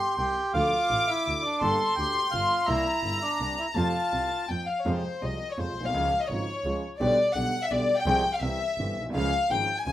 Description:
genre	tango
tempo	167 BPM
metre	3/4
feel	rubato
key	F major, F minor from 4.9 s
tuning	A4 = 441 Hz
part	bandoneon	melody	0.0-4.5 s	D4 to A5	-27 LUFS	right 1 dB	plate reverb
part	warm studio violin section	second line	0.0-9.9 s	C5 to D6	-27 LUFS	left 2 dB	plate reverb
part	warm grand piano	accompaniment	0.2-9.9 s	G1 to Ab4	-32 LUFS	right 1 dB	none
part	warm double bass	bass	0.2-9.9 s	G1 to F2	-34 LUFS	right 1 dB	none
room	wet studio reverb, RT60 0.6 s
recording	rough home demo mix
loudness	-24 LUFS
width	side -13 dB against mid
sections	0.0-4.9 A section; 4.9-9.9 B section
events	violin section solo 4.9-9.9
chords	0.0 C5; 0.5 Dm; 1.6 Gm; 2.7 C7; 3.8 F; 4.9 Fm; 5.9 Db; 7.0 G/B; 8.1 Fm/C; 8.4 C; 9.1 Db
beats	0.18 | 0.54 0.91 1.27 | 1.63 1.98 2.34 | 2.69 3.05 3.41 | 3.77 4.13 4.49 | 4.86 5.22 5.58 | 5.94 6.29 6.65 | 7.00 7.35 7.71 | 8.06 8.42 8.78 | 9.14 9.50 9.86

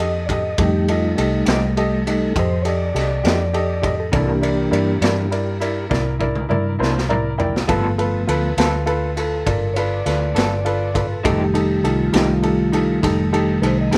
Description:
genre	slow blues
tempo	68 BPM (dotted quarters)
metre	12/8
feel	straight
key	unclear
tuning	A4 = 438 Hz
part	clear upright piano	accompaniment	0.0-14.0 s	Eb4 to Bb5	-25 LUFS	equal	slapback echo
part	mellow tonewheel organ	sustained chords	0.0-14.0 s	Eb3 to Eb5	-24 LUFS	equal	slow rotary speaker
part	vintage muted fingered electric bass	bass	0.0-14.0 s	F1 to G2	-25 LUFS	equal	none
part	raw garage drum kit	drums	0.0-14.0 s	kick drum, ride cymbal, snare drum, toms	-27 LUFS	equal	none
part	electric guitar through a small old amp	accompaniment	1.5-14.0 s	C3 to A4	-28 LUFS	equal	tremolo, slapback echo
room	little or no reverb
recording	none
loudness	-19 LUFS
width	mono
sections	0.0-14.0 A section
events	tonewheel organ solo 0.0-14.0; drum fill 5.9-7.7; upright piano fill 6.8-7.7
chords	0.0 F9; 4.1 C9; 7.7 G9; 11.2 F9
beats	| 0.58 1.47 2.35 3.24 | 4.13 5.02 5.91 6.80 | 7.69 8.57 9.46 10.36 | 11.24 12.13 13.03 13.92

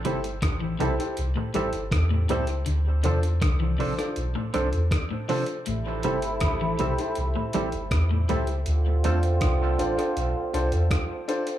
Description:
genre	dub reggae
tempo	80 BPM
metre	4/4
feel	straight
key	A minor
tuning	A4 = 440 Hz
part	electric guitar at the edge of break-up	arpeggios	0.0-8.4 s	G2 to E3	-33 LUFS	left 4 dB	dub echo
part	clear upright piano	stabs	0.0-11.5 s	D4 to C5	-31 LUFS	left 2 dB	dub echo
part	warm sub bass	bass	0.0-10.9 s	G1 to E2	-25 LUFS	equal	none
part	dusty soul sampler-style drum kit	drums	0.0-11.6 s	hi-hat, kick drum, rim click	-30 LUFS	equal	none
part	semi-hollow electric guitar	accompaniment	0.1-9.2 s	F3 to A4	-32 LUFS	right 6 dB	wide subtle chorus, dub echo
part	muted trombone section	second line	5.7-11.2 s	C3 to F4	-30 LUFS	right 2 dB	dub echo
room	light reverb, digital ambience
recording	small room ambience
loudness	-23 LUFS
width	side -12 dB against mid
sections	0.0-11.6 A section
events	break 0.0-5.7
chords	0.0 Am7; 2.7 Dm7; 5.7 Am7; 8.7 Dm7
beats	0.42 1.17 1.92 | 2.67 3.42 4.17 4.92 | 5.67 6.42 7.17 7.92 | 8.66 9.41 10.16 10.91

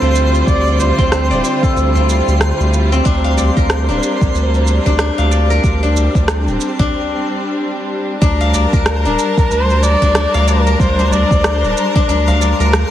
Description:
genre	organic downtempo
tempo	93 BPM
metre	4/4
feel	swing 59% on 16ths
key	unclear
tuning	A4 = 441 Hz
part	warm kamancheh	melody	0.0-1.8, 8.9-11.8 s	Bb4 to D5	-18 LUFS	equal	ping-pong delay
part	rich studio string section	sustained chords	0.0-12.9 s	D3 to A5	-20 LUFS	left 1 dB	sidechain pumping
part	steel-string zither	arpeggios	0.0-12.9 s	C4 to F5	-20 LUFS	left 2 dB	low-pass filter, ping-pong delay
part	round analog bass	bass	0.0-12.8 s	D1 to D2	-15 LUFS	equal	sidechain pumping
part	electronic shaker and rim click	drums	0.0-12.9 s	none	-22 LUFS	right 1 dB	none
part	twinkling granular texture	texture	0.0-12.9 s	C5	-27 LUFS	right 2 dB	built-in reverb
part	electronic kick drum	drums	0.5-12.1 s	none	-16 LUFS	equal	none
part	udu	percussion	0.8-12.4 s	none	-24 LUFS	right 1 dB	none
room	moderate lush hall reverb, RT60 2.0 s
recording	heavily compressed radio sound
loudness	-12 LUFS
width	side -11 dB against mid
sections	0.0-8.2 A section; 8.2-12.9 B section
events	break 6.9-8.2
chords	0.0 Dm7; 3.1 Bb/D; 8.2 Gm7/D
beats	| 0.47 1.12 1.76 2.41 | 3.06 3.70 4.34 4.99 | 5.63 6.28 6.93 7.57 | 8.22 8.86 9.51 10.15 | 10.80 11.44 12.09 12.73

